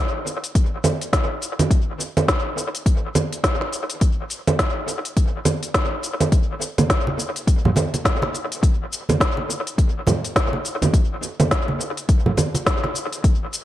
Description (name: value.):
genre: downtempo.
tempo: 104 BPM.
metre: 4/4.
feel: swing 60% on 16ths.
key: none.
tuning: none.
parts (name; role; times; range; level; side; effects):
organic electronic drum kit; drums; 0.3-13.6 s; congas, hi-hat, shaker, snare drum; -22 LUFS; right 1 dB; dub echo.
electronic kick drum; drums; 0.6-13.4 s; none; -19 LUFS; equal; overdrive.
congas; percussion; 6.8-12.9 s; none; -24 LUFS; right 1 dB; dub echo.
room: light reverb.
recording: echo-heavy mix.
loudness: -18 LUFS.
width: side -13 dB against mid.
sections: 0.0-13.6 A section.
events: none.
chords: none.